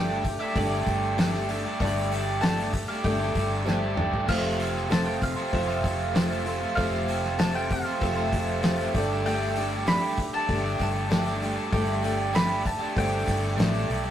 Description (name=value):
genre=folk rock and heartland rock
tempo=97 BPM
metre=4/4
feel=straight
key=unclear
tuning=A4 = 440 Hz
part: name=mandolin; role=melody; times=0.0-13.9 s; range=D5 to B5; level=-32 LUFS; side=right 1 dB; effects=none
part: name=dark upright piano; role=accompaniment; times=0.0-14.1 s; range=D4 to D5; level=-35 LUFS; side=right 2 dB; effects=none
part: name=picked old ladder-braced acoustic guitar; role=accompaniment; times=0.0-14.1 s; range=F3 to G4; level=-33 LUFS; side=left 4 dB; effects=none
part: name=hand-pumped harmonium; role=sustained chords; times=0.0-14.1 s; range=D4 to D5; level=-39 LUFS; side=right 2 dB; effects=none
part: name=overdriven electric guitar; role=riff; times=0.0-14.1 s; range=F2 to G4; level=-29 LUFS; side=right 2 dB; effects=spring reverb
part: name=hollow-body short-scale fingered electric bass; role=bass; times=0.0-14.1 s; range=F1 to B1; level=-31 LUFS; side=equal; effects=none
part: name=cloth-damped thuddy drum kit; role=drums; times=0.2-14.0 s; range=crash cymbal, hi-hat, kick drum, snare drum, toms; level=-29 LUFS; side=equal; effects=none
part: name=tambourine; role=percussion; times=0.2-14.1 s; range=none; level=-52 LUFS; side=right 2 dB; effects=none
room=wet small room reverb, RT60 0.5 s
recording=rough rehearsal-room recording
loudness=-23 LUFS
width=side -10 dB against mid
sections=0.0-14.1 A section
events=drum fill 3.7-4.3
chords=0.0 Gsus2; 4.3 Fadd9; 8.9 Gsus2